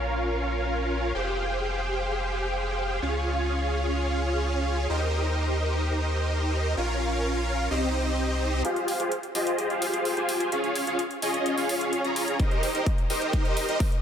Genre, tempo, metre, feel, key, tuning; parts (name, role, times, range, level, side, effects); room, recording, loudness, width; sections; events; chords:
EDM, festival progressive house; 128 BPM; 4/4; straight; F minor; A4 = 440 Hz
supersaw chords; riff; 0.0-13.8 s; C4 to Bb5; -26 LUFS; equal; ensemble chorus, sidechain pumping, low-pass filter, tape echo
saturated sub bass; bass; 0.0-8.6 s; F1 to Eb2; -29 LUFS; equal; sidechain pumping
electronic hi-hat; drums; 8.6-14.0 s; -34 LUFS; left 1 dB
electronic kick drum; drums; 12.4-13.9 s; -25 LUFS; equal
moderate lush hall reverb, RT60 2.5 s; -24 LUFS; side -8 dB against mid
0.0-8.6 A section; 8.6-14.0 B section
build-up 8.6-14.0; filter sweep on supersaw synth 8.6-14.0; drum fill 12.4-14.0
0.0 Bbm; 1.1 Fmadd9; 3.0 Db; 4.9 Eb6; 6.8 Bbm; 7.7 Cm; 8.6 Fmadd9; 10.5 Db; 12.4 Eb6